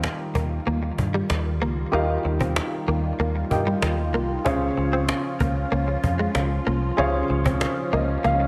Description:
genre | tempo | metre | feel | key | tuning
1980s-style pop | 95 BPM | 4/4 | straight | unclear | A4 = 440 Hz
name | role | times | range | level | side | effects
warm baby grand piano | accompaniment | 0.0-8.5 s | Db3 to G5 | -30 LUFS | equal | none
phased analog pad | sustained chords | 0.0-8.5 s | Eb3 to F4 | -31 LUFS | equal | phaser, chorus
vintage muted fingered electric bass | bass | 0.0-8.5 s | C2 to G2 | -28 LUFS | equal | none
cajon | drums | 0.0-8.4 s | none | -30 LUFS | equal | none
direct-recorded clean electric guitar | riff | 0.4-8.4 s | G3 to Eb4 | -32 LUFS | equal | ensemble chorus, digital delay
room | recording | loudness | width
moderate lush hall reverb, RT60 2.0 s | lossy compression artefacts | -24 LUFS | mono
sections
0.0-8.5 A section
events
grand piano fill 7.6-8.5; drum fill 8.2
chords
0.0 Ebadd9; 4.5 Dbmaj7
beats
0.04 0.67 1.30 | 1.93 2.56 3.19 3.83 | 4.46 5.09 5.72 6.35 | 6.98 7.62 8.25

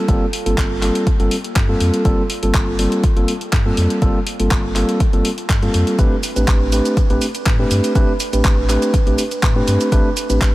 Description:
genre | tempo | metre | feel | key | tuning
deep house | 122 BPM | 4/4 | straight | G minor | A4 = 441 Hz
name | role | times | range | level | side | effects
mellow tine electric piano | stabs | 0.0-10.5 s | G3 to B4 | -19 LUFS | equal | sidechain pumping, analog delay
sub bass with octave | bass | 0.1-10.5 s | G1 to A2 | -19 LUFS | equal | sidechain pumping
deep house drum kit | drums | 0.1-10.5 s | handclaps, hi-hat, shaker | -24 LUFS | equal | none
electronic kick drum | drums | 0.1-10.5 s | none | -17 LUFS | equal | none
room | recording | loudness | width
light reverb | none | -14 LUFS | side -17 dB against mid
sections
0.0-10.5 A section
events
none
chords
0.0 Gm11; 6.0 Am11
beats
| 0.09 0.58 1.07 1.56 | 2.05 2.54 3.04 3.53 | 4.02 4.51 5.00 5.50 | 5.99 6.48 6.97 7.46 | 7.95 8.45 8.94 9.43 | 9.92 10.41

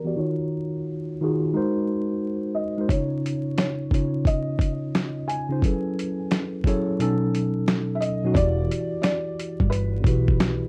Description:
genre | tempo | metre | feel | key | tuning
lo-fi hip hop | 88 BPM | 4/4 | swing 61% on 16ths | unclear | A4 = 440 Hz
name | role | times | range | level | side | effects
felt-muted upright piano | melody | 0.0-10.7 s | A#4 to G#5 | -34 LUFS | equal | low-pass filter, plate reverb
mellow tine electric piano | accompaniment | 0.0-10.7 s | B2 to D5 | -27 LUFS | equal | cassette tape, low-pass filter
dusty soul sampler-style drum kit | drums | 2.9-10.6 s | finger snaps, hi-hat, kick drum, snare drum | -25 LUFS | equal | overdrive, vintage 12-bit sampler grit
upright bass | bass | 8.4-10.6 s | E1 to B1 | -26 LUFS | equal | none
room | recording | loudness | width
moderate studio reverb, RT60 0.6 s | vinyl crackle | -24 LUFS | mono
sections
0.0-8.4 A section; 8.4-10.7 B section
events
filter sweep 0.0-8.4; kick muted 7.0-8.4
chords
0.2 D#m7; 1.5 G#9; 2.9 C#add9; 5.6 F#m11; 7.0 B9; 8.4 Em9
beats
| 0.17 0.85 1.53 2.21 | 2.90 3.58 4.26 4.94 | 5.62 6.30 6.99 7.67 | 8.35 9.03 9.71 10.40

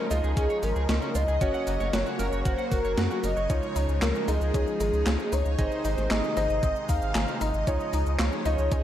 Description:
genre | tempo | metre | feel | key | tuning
synthwave | 115 BPM | 4/4 | straight | Db major | A4 = 440 Hz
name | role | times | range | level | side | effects
warm velvety synth lead | melody | 0.0-8.8 s | Ab4 to F5 | -31 LUFS | equal | chorus, tape echo
string machine, violins | second line | 0.0-8.8 s | Ab4 to F5 | -37 LUFS | equal | ensemble chorus, tape echo
soft supersaw | sustained chords | 0.0-8.8 s | C3 to Eb4 | -34 LUFS | left 1 dB | phaser, sidechain pumping
electric guitar at the edge of break-up | riff | 0.0-3.4 s | Db4 to Gb5 | -37 LUFS | right 1 dB | lush chorus, tape echo
warm electric grand piano | stabs | 0.0-8.8 s | Db4 to Eb5 | -35 LUFS | right 3 dB | none
round analog bass | bass | 0.1-8.8 s | Gb1 to Gb2 | -28 LUFS | equal | sidechain pumping
gated 80s digital drum machine | drums | 0.1-8.8 s | cabasa, handclaps, hi-hat, snare drum | -31 LUFS | equal | gated reverb, gated reverb snare, overdrive
electronic kick drum | drums | 0.4-8.8 s | none | -28 LUFS | equal | overdrive
analog pluck | arpeggios | 3.5-8.8 s | C4 to Ab4 | -37 LUFS | left 5 dB | chorus, tape echo
room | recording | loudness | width
light reverb, digital ambience | none | -24 LUFS | side -11 dB against mid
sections
0.0-8.8 A section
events
none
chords
0.0 Dbadd9; 1.4 Gb; 3.5 Dbadd9; 5.6 Ab; 7.7 Dbadd9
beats
0.37 0.89 | 1.41 1.93 2.46 2.98 | 3.50 4.02 4.54 5.06 | 5.59 6.11 6.63 7.15 | 7.67 8.20 8.72

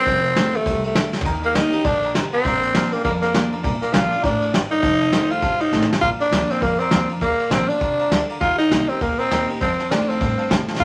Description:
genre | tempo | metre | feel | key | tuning
rockabilly | 201 BPM | 4/4 | swing 60% on 8ths | Bb major | A4 = 440 Hz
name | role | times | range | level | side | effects
growling tenor saxophone | melody | 0.0-10.8 s | A3 to F4 | -22 LUFS | equal | none
picked steel-string acoustic guitar | accompaniment | 0.0-10.8 s | F2 to G4 | -29 LUFS | equal | none
upright bass | bass | 0.1-10.8 s | F1 to C3 | -33 LUFS | equal | none
soft brush drum kit | drums | 0.1-10.8 s | kick drum, ride cymbal, snare drum, splash cymbal, toms | -25 LUFS | equal | none
tack piano | accompaniment | 1.2-10.8 s | C5 to C6 | -33 LUFS | equal | none
room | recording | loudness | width
wet small room reverb, RT60 0.5 s | vinyl crackle | -20 LUFS | mono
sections
0.0-6.0 A section; 6.0-10.8 B section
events
drum fill 1.1, 5.7, 10.7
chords
0.1 F7; 1.3 Eb; 2.4 Bb; 4.8 F7; 6.0 Bb; 8.4 Eb; 9.6 F7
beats
| 0.06 0.36 0.66 0.95 | 1.25 1.55 1.85 2.15 | 2.44 2.74 3.04 3.34 | 3.63 3.93 4.23 4.53 | 4.83 5.12 5.42 5.72 | 6.02 6.32 6.62 6.92 | 7.21 7.51 7.81 8.11 | 8.41 8.71 9.01 9.31 | 9.61 9.90 10.20 10.50 | 10.80

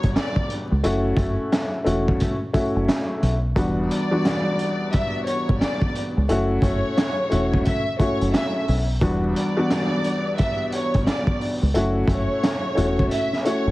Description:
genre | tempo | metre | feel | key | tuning
hip hop, boom-bap hip-hop | 88 BPM | 4/4 | swing 63% on 16ths | unclear | A4 = 439 Hz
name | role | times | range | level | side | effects
warm studio violin section | melody | 0.0-13.7 s | C#5 to E5 | -27 LUFS | equal | high-pass filter, low-pass filter, plate reverb, ping-pong delay
dark upright piano | accompaniment | 0.0-13.7 s | E2 to F#4 | -24 LUFS | left 1 dB | cassette tape, high-pass filter, low-pass filter, plate reverb
deep dub fingered electric bass | bass | 0.0-13.7 s | E1 to C#2 | -23 LUFS | equal | none
crunchy breakbeat drum kit | drums | 0.0-13.7 s | hi-hat, kick drum, snare drum | -24 LUFS | equal | none
room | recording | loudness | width
light reverb | heavily compressed radio sound, vinyl crackle | -19 LUFS | side -18 dB against mid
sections
0.0-13.7 A section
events
kick muted 13.1-13.7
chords
0.0 Em7; 0.8 F#m7; 3.6 Em7; 6.3 F#m7; 9.0 Em7; 11.7 F#m7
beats
0.15 | 0.83 1.52 2.20 2.88 | 3.56 4.24 4.93 5.61 | 6.29 6.97 7.65 8.34 | 9.02 9.70 10.38 11.06 | 11.74 12.43 13.11

